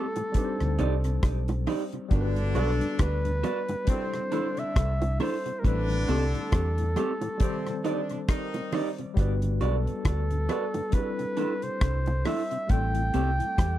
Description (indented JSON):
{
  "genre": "lovers rock reggae",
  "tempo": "68 BPM",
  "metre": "4/4",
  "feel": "swing 58% on 16ths",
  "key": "unclear",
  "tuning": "A4 = 438 Hz",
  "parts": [
    { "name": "warm flugelhorn", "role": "melody", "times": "0.0-13.8 s", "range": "A4 to G5", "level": "-32 LUFS", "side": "equal", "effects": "tape echo" },
    { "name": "tine electric piano", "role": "accompaniment", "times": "0.0-13.8 s", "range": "Eb3 to D5", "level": "-35 LUFS", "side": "left 3 dB", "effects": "medium stereo tremolo" },
    { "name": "electric guitar through a small old amp", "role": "stabs", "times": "0.0-13.3 s", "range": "C4 to D5", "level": "-33 LUFS", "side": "right 4 dB", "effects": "spring reverb, tape echo" },
    { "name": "mellow tonewheel organ", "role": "accompaniment", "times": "0.2-13.5 s", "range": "G2 to F#4", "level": "-38 LUFS", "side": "left 4 dB", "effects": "chorus vibrato, slow rotary speaker, tape echo" },
    { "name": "damped 70s drum kit", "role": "drums", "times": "0.2-13.8 s", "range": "hi-hat, kick drum, rim click", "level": "-26 LUFS", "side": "equal", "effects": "tape echo" },
    { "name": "bongos", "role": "percussion", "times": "0.2-13.8 s", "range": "none", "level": "-37 LUFS", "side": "right 4 dB", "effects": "tape echo" },
    { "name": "vintage muted fingered electric bass", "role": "bass", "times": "0.6-13.8 s", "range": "G1 to E2", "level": "-27 LUFS", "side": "equal", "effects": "none" },
    { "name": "clear horn section", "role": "second line", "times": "2.1-8.9 s", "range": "C3 to Eb4", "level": "-35 LUFS", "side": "left 2 dB", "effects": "none" }
  ],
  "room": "little or no reverb",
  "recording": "dry, close 1970s-style studio recording",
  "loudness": "-25 LUFS",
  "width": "side -13 dB against mid",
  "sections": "0.0-13.8 A section",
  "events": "none",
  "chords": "0.3 Cmadd9; 2.1 Gmaj7; 3.9 C69; 5.6 Am7; 7.4 Cmadd9; 9.2 Gmaj7; 10.9 C69; 12.7 Am7"
}